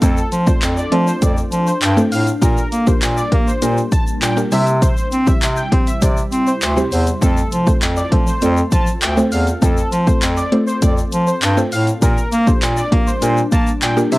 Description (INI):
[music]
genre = dance-pop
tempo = 100 BPM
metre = 4/4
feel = straight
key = F major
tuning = A4 = 440 Hz
[part]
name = octave-doubled lead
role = melody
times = 0.0-14.2 s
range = A4 to A5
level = -25 LUFS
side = equal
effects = chorus, sidechain pumping
[part]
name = mallet-like synth pluck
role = accompaniment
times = 0.0-14.2 s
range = G3 to D5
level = -21 LUFS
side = equal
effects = chorus, phaser, sidechain pumping, cassette tape
[part]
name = glassy FM pad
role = sustained chords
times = 0.0-14.2 s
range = C3 to A4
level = -28 LUFS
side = left 1 dB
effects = ensemble chorus, built-in reverb, sidechain pumping, cassette tape
[part]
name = clear bass clarinet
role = bass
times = 0.0-14.2 s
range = D2 to C4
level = -18 LUFS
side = equal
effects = sidechain pumping
[part]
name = deep house drum kit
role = drums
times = 0.0-14.2 s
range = handclaps, hi-hat, kick drum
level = -17 LUFS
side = equal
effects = cassette tape
[part]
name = egg shaker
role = percussion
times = 0.0-14.2 s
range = none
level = -33 LUFS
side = left 6 dB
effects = none
[sound]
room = light reverb, digital ambience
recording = home recording on cassette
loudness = -14 LUFS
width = side -19 dB against mid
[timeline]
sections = 0.0-14.2 A section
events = none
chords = 0.0 F; 2.4 Bb6; 4.5 C; 7.2 F; 12.0 Bb6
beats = | 0.02 0.62 1.22 1.82 | 2.42 3.02 3.62 4.22 | 4.82 5.42 6.02 6.62 | 7.22 7.82 8.42 9.02 | 9.62 10.22 10.82 11.42 | 12.02 12.62 13.22 13.82